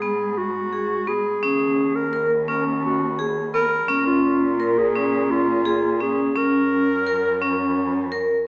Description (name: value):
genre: contemporary instrumental, chamber music in an uneven meter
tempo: 170 BPM (eighths)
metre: 7/8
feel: straight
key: unclear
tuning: A4 = 439 Hz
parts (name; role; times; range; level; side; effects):
- warm clarinet; melody; 0.0-8.1 s; E#4 to A#4; -22 LUFS; equal; none
- vibraphone with hard mallets; arpeggios; 0.0-8.4 s; B3 to A#4; -21 LUFS; equal; none
- dark cello; bass; 0.0-8.5 s; D#2 to A#2; -29 LUFS; equal; none
room: wet recital hall reverb, RT60 1.3 s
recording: recorded in a church or concert hall, small speaker sound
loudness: -18 LUFS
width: side -27 dB against mid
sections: 0.0-8.5 A section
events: none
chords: 0.0 G#m7; 1.4 D#7sus4; 3.9 A#m7; 6.4 F#